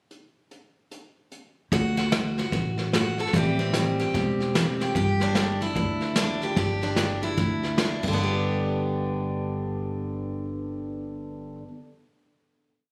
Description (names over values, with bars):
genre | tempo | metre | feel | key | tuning
honky-tonk and classic country | 148 BPM | 4/4 | swing 62% on 8ths | G major | A4 = 441 Hz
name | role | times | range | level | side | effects
vintage brush drum kit | drums | 0.1-8.1 s | crash cymbal, hi-hat, kick drum, snare drum | -31 LUFS | equal | none
picked steel-string acoustic guitar | accompaniment | 1.7-11.8 s | E2 to A4 | -29 LUFS | equal | none
upright bass | bass | 1.7-11.5 s | E1 to D2 | -31 LUFS | equal | none
room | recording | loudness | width
light reverb | recorded on a phone in the room, studio reverb | -26 LUFS | mono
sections
0.1-1.7 pickup bar; 1.7-8.2 interlude; 8.2-11.4 final hit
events
none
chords
0.1 N.C.; 1.7 D; 3.3 Am7; 4.9 G5; 8.2 G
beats
| 0.11 0.51 0.91 1.32 | 1.72 2.12 2.53 2.93 | 3.33 3.74 4.14 4.54 | 4.95 5.35 5.75 6.16 | 6.56 6.97 7.37 7.78 | 8.18 8.59 8.99 9.39 | 9.80 10.20 10.61 11.01